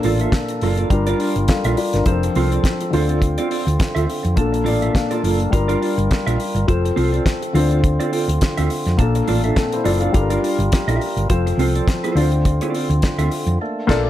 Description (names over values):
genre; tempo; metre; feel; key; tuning
disco; 104 BPM; 4/4; swing 56% on 16ths; G minor; A4 = 441 Hz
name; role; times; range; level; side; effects
dark concert grand piano; accompaniment; 0.0-14.1 s; Bb2 to F5; -22 LUFS; left 5 dB; none
mellow electric guitar; accompaniment; 0.0-14.1 s; Bb3 to E5; -24 LUFS; right 5 dB; wide subtle chorus
percussive tonewheel organ; sustained chords; 0.0-14.1 s; D3 to Bb4; -26 LUFS; right 1 dB; overdrive, stopped rotary speaker
hollow-body short-scale fingered electric bass; bass; 0.0-14.1 s; F1 to F2; -19 LUFS; equal; none
damped 70s drum kit; drums; 0.0-14.1 s; crash cymbal, hi-hat, kick drum, snare drum; -21 LUFS; equal; none
room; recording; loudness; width
studio reverb; none; -16 LUFS; side -13 dB against mid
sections
0.0-14.1 A section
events
grand piano fill 4.4-5.5; band accent 13.6-14.1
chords
0.0 Bbmaj7; 0.9 Gm7; 2.1 F; 2.9 Dm7; 4.4 Bbmaj7; 5.5 Gm7; 6.7 F; 7.5 Dm7; 9.0 Bbmaj7; 10.1 Gm7; 11.3 F; 12.2 Dm7